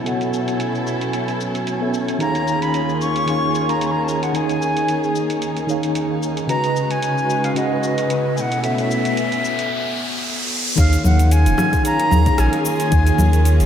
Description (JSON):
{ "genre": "sunset chillout", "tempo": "112 BPM", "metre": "4/4", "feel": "swing 55% on 16ths", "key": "Eb minor", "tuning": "A4 = 440 Hz", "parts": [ { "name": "mellow tine electric piano", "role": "accompaniment", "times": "0.0-13.7 s", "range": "Db3 to Ab5", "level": "-22 LUFS", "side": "equal", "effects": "medium stereo tremolo, auto-pan, tape echo" }, { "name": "dark chamber string section", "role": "sustained chords", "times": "0.0-13.7 s", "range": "Eb2 to Cb5", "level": "-24 LUFS", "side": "equal", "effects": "none" }, { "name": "wind-like tuned noise texture", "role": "texture", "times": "0.0-9.7 s", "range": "Ab5", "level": "-33 LUFS", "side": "right 2 dB", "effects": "built-in reverb, analog chorus" }, { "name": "smooth R&B drum kit", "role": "drums", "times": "0.1-13.7 s", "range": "congas, hi-hat, rim click, shaker", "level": "-27 LUFS", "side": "left 2 dB", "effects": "low-pass filter on hats, low-pass filter on perc, low-pass filter on snare, low-pass filter on room" }, { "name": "bright wooden flute", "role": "melody", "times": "2.2-13.4 s", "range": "Eb5 to Db6", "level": "-22 LUFS", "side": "left 1 dB", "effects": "analog delay" }, { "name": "riser", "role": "sound effects", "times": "7.9-10.8 s", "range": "none", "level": "-27 LUFS", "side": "equal", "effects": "none" }, { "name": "warm sub bass", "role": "bass", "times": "10.8-13.7 s", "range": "Eb1 to Eb2", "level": "-14 LUFS", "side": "equal", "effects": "tube saturation" }, { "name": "electronic kick drum", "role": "drums", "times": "10.8-13.0 s", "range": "none", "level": "-20 LUFS", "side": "equal", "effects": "none" } ], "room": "wet lush hall reverb, RT60 1.9 s, digital ambience", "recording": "dreamy mix soaked in reverb", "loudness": "-16 LUFS", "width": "side -9 dB against mid", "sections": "0.0-10.8 A section; 10.8-13.7 B section", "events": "riser 7.9-10.8; break 9.7-10.8", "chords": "0.0 B9sus4; 2.2 Eb9sus4; 6.5 Db9sus4; 8.4 B9sus4; 10.8 Eb9sus4", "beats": "| 0.06 0.60 1.13 1.67 | 2.21 2.74 3.28 3.81 | 4.35 4.88 5.42 5.96 | 6.49 7.03 7.56 8.10 | 8.63 9.17 9.71 10.24 | 10.78 11.31 11.85 12.38 | 12.92 13.46" }